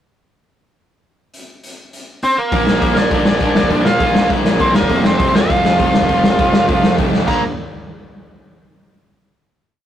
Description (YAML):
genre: punk rock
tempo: 202 BPM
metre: 4/4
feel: straight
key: Bb major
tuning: A4 = 445 Hz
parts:
  - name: raw garage drum kit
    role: drums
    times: 1.3-7.4 s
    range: crash cymbal, hi-hat, kick drum, snare drum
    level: -16 LUFS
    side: equal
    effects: none
  - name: smooth overdriven lead guitar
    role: melody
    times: 2.2-7.4 s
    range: Bb3 to Bb5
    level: -17 LUFS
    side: right 1 dB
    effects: none
  - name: distorted electric guitar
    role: riff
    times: 2.5-7.4 s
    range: F2 to Bb3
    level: -22 LUFS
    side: right 5 dB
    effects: distortion
  - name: overdriven electric guitar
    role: riff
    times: 2.5-7.4 s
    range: F2 to Bb3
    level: -22 LUFS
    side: left 5 dB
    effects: none
  - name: fuzz picked electric bass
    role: bass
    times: 2.5-7.4 s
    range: F1 to Bb1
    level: -23 LUFS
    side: equal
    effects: overdrive
room: light reverb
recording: rough rehearsal-room recording, tube saturation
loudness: -12 LUFS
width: side -10 dB against mid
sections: 1.3-2.5 pickup bar; 2.5-7.3 verse; 7.3-8.5 final chord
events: drum fill 7.1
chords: 1.3 Bbsus2; 2.5 Bb; 4.8 F5; 7.3 Bb5